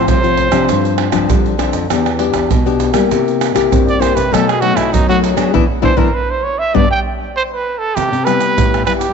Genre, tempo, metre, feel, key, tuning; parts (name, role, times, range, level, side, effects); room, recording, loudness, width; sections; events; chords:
samba and choro; 99 BPM; 4/4; straight; A4 = 440 Hz
breathy trumpet; melody; 0.0-9.1 s; D#4 to G5; -17 LUFS; right 4 dB
nylon-string guitar; accompaniment; 0.0-9.1 s; F#2 to G#4; -16 LUFS; left 11 dB
nylon-string guitar; bass; 0.0-8.8 s; E2 to C4; -20 LUFS; equal
tube shaker, surdo, pandeiro and tamborim; percussion; 0.1-9.1 s; -17 LUFS; right 4 dB
moderate plate reverb, RT60 2.7 s; 1960s-style stereo, nothing above 8.0 kHz; -12 LUFS; side -6 dB against mid
0.0-8.0 A section; 8.0-9.1 B section
trumpet solo 0.0-8.0; band accent 5.5-8.0; drum fill 7.4-8.0
0.0 F/A; 0.7 G7sus4; 1.9 Em7; 3.1 C7; 4.3 B7; 5.5 E5; 6.8 G; 8.0 Cmaj7